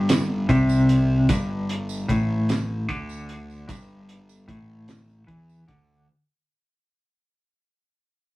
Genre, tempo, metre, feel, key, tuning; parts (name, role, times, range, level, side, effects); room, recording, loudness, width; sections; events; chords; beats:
psychedelic rock; 50 BPM (dotted quarters); 6/8; straight; A4 = 440 Hz
clean electric guitar; riff; 0.0-6.1 s; G2 to E3; -22 LUFS; equal; tremolo
fuzz picked electric bass; bass; 0.0-6.1 s; G1 to E2; -31 LUFS; equal; overdrive
cloth-damped thuddy drum kit; drums; 0.1-5.9 s; hi-hat, kick drum, snare drum; -24 LUFS; right 1 dB
tambourine; percussion; 0.1-5.7 s; -43 LUFS; right 6 dB
moderate studio reverb, RT60 0.5 s; rough rehearsal-room recording; -20 LUFS; side -19 dB against mid
0.0-6.1 A section
fade-out 0.0-6.1
0.0 N.C.; 1.3 G5
0.09 | 1.28 2.48 | 3.69 4.89